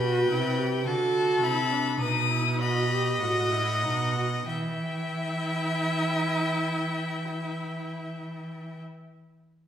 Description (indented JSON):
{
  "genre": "classical, baroque-style fugue for string quartet",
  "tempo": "46-56 BPM",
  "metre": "4/4",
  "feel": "straight",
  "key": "E minor",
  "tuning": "A4 = 436 Hz",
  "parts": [
    { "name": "rich violin", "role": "melody", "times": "0.0-8.8 s", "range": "F#5 to D#6", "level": "-33 LUFS", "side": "left 6 dB", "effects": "none" },
    { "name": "clear violin", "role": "second line", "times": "0.0-8.8 s", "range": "A4 to E5", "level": "-30 LUFS", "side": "left 2 dB", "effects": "none" },
    { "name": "warm viola", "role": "accompaniment", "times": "0.0-8.8 s", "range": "D4 to G4", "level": "-30 LUFS", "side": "right 2 dB", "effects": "none" },
    { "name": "rich cello", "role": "bass", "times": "0.0-8.8 s", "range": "A2 to E3", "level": "-30 LUFS", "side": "right 2 dB", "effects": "none" }
  ],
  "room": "wet recital hall reverb, RT60 1.4 s",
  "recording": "recorded in a church or concert hall",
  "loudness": "-25 LUFS",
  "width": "side -9 dB against mid",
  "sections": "0.0-4.5 A section; 4.5-9.6 B section",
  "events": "slowing down 0.0-4.5",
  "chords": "0.0 Em/B; 2.0 B7; 4.5 Em",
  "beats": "0.87 2.02 3.22 | 4.48 5.77 7.06 8.36"
}